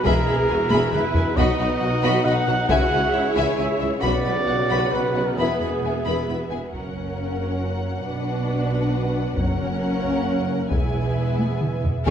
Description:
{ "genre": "cinematic, epic orchestral film score", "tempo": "135 BPM", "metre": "3/4", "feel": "straight", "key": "F# mixolydian", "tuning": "A4 = 440 Hz", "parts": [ { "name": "warm symphonic violin section", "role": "melody", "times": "0.0-12.1 s", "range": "E5 to B5", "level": "-32 LUFS", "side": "left 3 dB", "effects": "none" }, { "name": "warm symphonic violin section", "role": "second line", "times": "0.0-12.1 s", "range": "E4 to E5", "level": "-30 LUFS", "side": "left 4 dB", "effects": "none" }, { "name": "warm symphonic viola section", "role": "accompaniment", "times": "0.0-12.1 s", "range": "C#3 to A#4", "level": "-31 LUFS", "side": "right 1 dB", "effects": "none" }, { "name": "warm French horn section", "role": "sustained chords", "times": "0.0-12.1 s", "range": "G#3 to F#4", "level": "-30 LUFS", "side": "left 3 dB", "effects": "none" }, { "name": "warm symphonic string section", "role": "sustained chords", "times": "0.0-12.1 s", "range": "B3 to F#5", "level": "-28 LUFS", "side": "equal", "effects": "none" }, { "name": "warm trombone section", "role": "sustained chords", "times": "0.0-6.5 s", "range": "G#2 to G#3", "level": "-32 LUFS", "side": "right 4 dB", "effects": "none" }, { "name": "warm trumpet", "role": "stabs", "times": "0.0-6.3, 12.1 s", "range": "G#4 to F#5", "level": "-25 LUFS", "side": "right 1 dB", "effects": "none" }, { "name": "warm tuba", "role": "bass", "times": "0.0-6.6, 12.1 s", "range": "E1 to C#2", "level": "-29 LUFS", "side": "right 2 dB", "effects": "none" }, { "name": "taiko ensemble", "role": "drums", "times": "0.0-12.1 s", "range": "none", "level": "-25 LUFS", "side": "equal", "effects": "none" }, { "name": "warm symphonic cello section", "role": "bass", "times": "0.1-12.1 s", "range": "E2 to C#3", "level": "-30 LUFS", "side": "right 2 dB", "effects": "none" }, { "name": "warm symphonic double bass section", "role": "bass", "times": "0.1-12.1 s", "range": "E1 to C#2", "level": "-28 LUFS", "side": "right 3 dB", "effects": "none" }, { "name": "timpani", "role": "percussion", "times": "2.7-3.3, 9.4-10.0, 12.1 s", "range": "F#2 to C#3", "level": "-30 LUFS", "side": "left 1 dB", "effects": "none" } ], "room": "wet recital hall reverb, RT60 1.3 s", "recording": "recorded in a church or concert hall", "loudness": "-20 LUFS", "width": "side -8 dB against mid", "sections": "0.0-6.7 A section; 6.7-12.1 B section", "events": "drum fill 0.7-1.4, 11.4-12.1", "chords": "0.1 E; 1.4 B; 2.7 C#m; 4.0 Bm; 5.4 E; 6.7 F#; 8.1 Bm; 9.4 F#; 10.7 E", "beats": "| 0.05 0.49 0.93 | 1.37 1.81 2.26 | 2.70 3.15 3.59 | 4.03 4.47 4.92 | 5.37 5.83 6.28 | 6.73 7.18 7.62 | 8.06 8.50 8.94 | 9.38 9.82 10.26 | 10.71 11.17 11.62 | 12.07" }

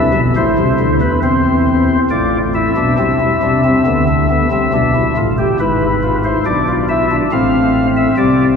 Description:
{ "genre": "classical, baroque-style 3-part fugue for pipe organ", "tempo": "69 BPM", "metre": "4/4", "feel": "straight", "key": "unclear", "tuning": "A4 = 440 Hz", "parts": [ { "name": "pipe organ, flutes", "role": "solo", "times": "0.0-8.6 s", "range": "G#1 to F5", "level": "-11 LUFS", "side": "left 1 dB", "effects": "none" } ], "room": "wet cathedral reverb, RT60 6.2 s", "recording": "studio ambience", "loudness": "-12 LUFS", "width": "side -6 dB against mid", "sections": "0.0-2.1 A section; 2.1-8.6 B section", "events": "none", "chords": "0.4 Am; 2.1 F/A; 3.9 Bm7b5; 5.6 E7/G#; 7.3 Am", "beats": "0.36 1.23 | 2.11 2.99 3.86 4.73 | 5.60 6.46 7.32 8.18" }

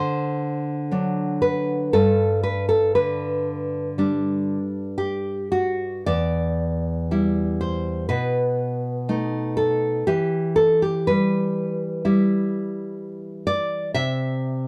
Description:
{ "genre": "romantic piece for solo classical guitar", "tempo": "54-63 BPM", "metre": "4/4", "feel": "rubato", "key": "G major", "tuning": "A4 = 440 Hz", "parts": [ { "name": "nylon-string guitar", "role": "solo", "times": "0.0-14.7 s", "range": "E2 to E5", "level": "-23 LUFS", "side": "equal", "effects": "none" } ], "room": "light reverb", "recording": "dark, warm production", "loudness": "-23 LUFS", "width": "mono", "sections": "0.0-14.7 A section", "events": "none", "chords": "0.0 D7; 1.9 G; 6.1 Em; 8.1 B7; 10.1 Em; 14.0 C", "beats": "0.91 | 1.94 2.95 3.98 4.98 | 6.07 7.10 8.10 9.08 | 10.07 11.06 12.03 12.99 | 13.95" }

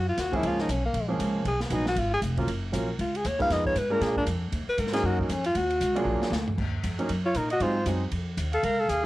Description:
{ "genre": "jazz, small-group swing and bop", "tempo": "234 BPM", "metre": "4/4", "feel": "swing 60% on 8ths", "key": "Eb minor", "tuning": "A4 = 436 Hz", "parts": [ { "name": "clear alto saxophone", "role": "melody", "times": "0.0-9.1 s", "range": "Bb3 to F5", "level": "-27 LUFS", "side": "left 1 dB", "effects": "none" }, { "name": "upright bass", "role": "bass", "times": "0.0-9.1 s", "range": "F1 to Bb2", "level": "-30 LUFS", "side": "equal", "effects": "tube saturation" }, { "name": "open jazz drum kit", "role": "drums", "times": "0.2-9.0 s", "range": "crash cymbal, hi-hat, kick drum, ride cymbal, snare drum, toms", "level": "-35 LUFS", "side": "equal", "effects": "none" }, { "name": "clear upright piano", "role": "accompaniment", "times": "0.3-9.1 s", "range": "F3 to Cb5", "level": "-30 LUFS", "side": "right 2 dB", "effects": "cassette tape" }, { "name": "warm trumpet", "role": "second line", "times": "7.3-9.1 s", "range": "Bb4 to F5", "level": "-30 LUFS", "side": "right 2 dB", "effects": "cassette tape" } ], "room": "moderate spring reverb, RT60 1.1 s, studio reverb", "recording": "home recording on cassette", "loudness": "-24 LUFS", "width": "side -17 dB against mid", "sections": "0.0-6.6 A section; 6.6-9.1 B section", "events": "alto saxophone solo 0.0-6.6; drum fill 6.1-6.6", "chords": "0.4 Db6; 1.5 Abm7; 2.0 Db; 2.5 Gbmaj7; 3.5 Fm7b5; 4.0 Bb7; 4.5 Ebm7; 6.1 Bb7b13; 6.6 Ebm; 7.6 Ab7", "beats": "0.17 | 0.43 0.68 0.94 1.20 | 1.45 1.71 1.97 2.22 | 2.48 2.74 2.99 3.25 | 3.50 3.76 4.02 4.27 | 4.53 4.79 5.04 5.30 | 5.55 5.81 6.07 6.32 | 6.58 6.83 7.09 7.35 | 7.60 7.86 8.12 8.37 | 8.63 8.89" }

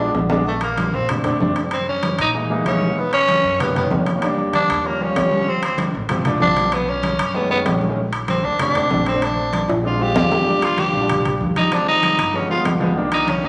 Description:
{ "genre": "Afro-Cuban jazz", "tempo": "192 BPM", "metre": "4/4", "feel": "straight", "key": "Eb major from 10.5 s", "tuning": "A4 = 441 Hz", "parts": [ { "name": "growling tenor saxophone", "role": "melody", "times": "0.0-13.5 s", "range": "A3 to G4", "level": "-22 LUFS", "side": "equal", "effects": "none" }, { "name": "warm baby grand piano", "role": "accompaniment", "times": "0.0-13.5 s", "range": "D#3 to F4", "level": "-26 LUFS", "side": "equal", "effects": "none" }, { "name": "upright bass", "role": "bass", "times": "0.0-13.5 s", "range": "G1 to Cb3", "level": "-31 LUFS", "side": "equal", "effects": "none" }, { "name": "congas", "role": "percussion", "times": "0.1-13.5 s", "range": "none", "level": "-26 LUFS", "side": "equal", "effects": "none" }, { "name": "timbales", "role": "percussion", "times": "0.1-13.4 s", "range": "none", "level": "-28 LUFS", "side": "equal", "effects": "none" } ], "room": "wet large studio reverb, RT60 1.4 s", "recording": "none", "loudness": "-19 LUFS", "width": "mono", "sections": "0.5-10.5 A section; 10.5-13.5 A section", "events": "drum fill 0.0-0.5, 9.7-10.5; tenor saxophone solo 0.5-13.5", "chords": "0.5 Bbmaj9; 1.7 Gb13; 3.0 Bmaj9; 4.2 Em7b5; 4.8 Eb9; 5.5 Dm7; 6.7 B13; 8.0 Bbmaj9; 9.8 Bb7; 10.5 Ebmaj9; 11.7 Dm7b5; 12.3 G7b9; 13.0 Cm9", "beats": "0.15 | 0.47 0.78 1.09 1.41 | 1.72 2.03 2.35 2.66 | 2.97 3.29 3.60 3.91 | 4.22 4.54 4.85 5.16 | 5.47 5.79 6.10 6.41 | 6.72 7.04 7.35 7.66 | 7.97 8.28 8.60 8.91 | 9.22 9.53 9.84 10.16 | 10.47 10.78 11.09 11.40 | 11.72 12.03 12.34 12.65 | 12.96 13.28" }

